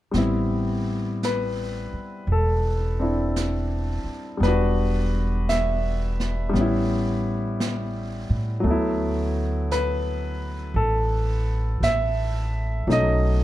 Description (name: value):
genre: jazz ballad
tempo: 57 BPM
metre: 4/4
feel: swing 67% on 8ths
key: A minor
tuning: A4 = 440 Hz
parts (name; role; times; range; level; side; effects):
- clear concert grand piano; accompaniment; 0.1-13.4 s; F#3 to E5; -24 LUFS; left 1 dB; none
- upright bass; bass; 0.1-13.4 s; E1 to A2; -24 LUFS; equal; none
- jazz brush drum kit; drums; 0.1-13.4 s; brushed snare drum, hi-hat, snare drum; -35 LUFS; right 1 dB; none
room: light reverb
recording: dark, warm production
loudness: -22 LUFS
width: side -14 dB against mid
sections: 0.1-13.4 A section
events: none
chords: 0.1 Am9; 4.4 Em7; 6.5 A7; 8.6 D69; 12.9 B9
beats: | 0.14 1.22 2.29 3.35 | 4.41 5.47 6.53 7.58 | 8.63 9.69 10.75 11.81 | 12.88